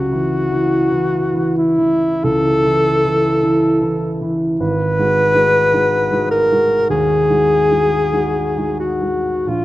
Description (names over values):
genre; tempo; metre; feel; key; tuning
classical, romantic duo for alto saxophone and grand piano; 42-53 BPM; 4/4; rubato; unclear; A4 = 438 Hz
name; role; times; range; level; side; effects
mellow alto saxophone; melody; 0.0-9.6 s; E4 to Cb5; -15 LUFS; left 1 dB; none
dark baby grand piano; accompaniment; 0.0-9.6 s; Ab1 to Gb4; -18 LUFS; right 1 dB; none
room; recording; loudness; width
wet recital hall reverb, RT60 1.6 s; dark, warm production; -13 LUFS; side -16 dB against mid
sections
0.0-9.6 A section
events
none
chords
0.0 A/C#; 4.6 Abm7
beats
0.92 2.23 3.43 | 4.60 5.73 6.90 8.13 | 9.47